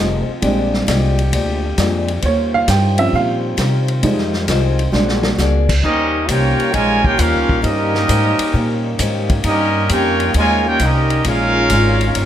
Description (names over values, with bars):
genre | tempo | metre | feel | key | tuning
jazz, big band swing | 133 BPM | 4/4 | swing 68% on 8ths | Eb major from 5.8 s | A4 = 440 Hz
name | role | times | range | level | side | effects
picked acoustic archtop guitar | accompaniment | 0.0-12.3 s | Bb2 to D5 | -25 LUFS | left 5 dB | none
warm trombone section | sustained chords | 0.0-12.3 s | D3 to C5 | -27 LUFS | left 1 dB | none
upright bass | bass | 0.0-12.3 s | F1 to C3 | -18 LUFS | equal | none
dark baby grand piano | accompaniment | 0.4-5.3 s | F3 to G5 | -19 LUFS | right 3 dB | none
vintage drum kit | drums | 0.4-12.3 s | crash cymbal, hi-hat, kick drum, ride cymbal, snare drum | -22 LUFS | equal | none
clear trumpet section | melody | 5.8-12.3 s | Db4 to Ab5 | -18 LUFS | equal | none
bright trombone section | second line | 5.8-12.3 s | G3 to G4 | -19 LUFS | right 1 dB | none
room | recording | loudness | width
light reverb | close, detailed microphones | -13 LUFS | side -10 dB against mid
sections
0.0-5.8 A section; 5.8-12.3 B section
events
grand piano solo 0.0-5.8; drum fill 4.9-5.4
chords
0.4 Bb13; 2.2 Eb13; 4.0 Fm7; 4.9 Bb7alt; 5.8 Eb13; 11.3 Bbm7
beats
| 0.43 0.88 1.33 1.78 | 2.23 2.68 3.13 3.58 | 4.03 4.49 4.94 5.39 | 5.84 6.29 6.74 7.19 | 7.64 8.09 8.54 9.00 | 9.45 9.90 10.35 10.80 | 11.25 11.70 12.15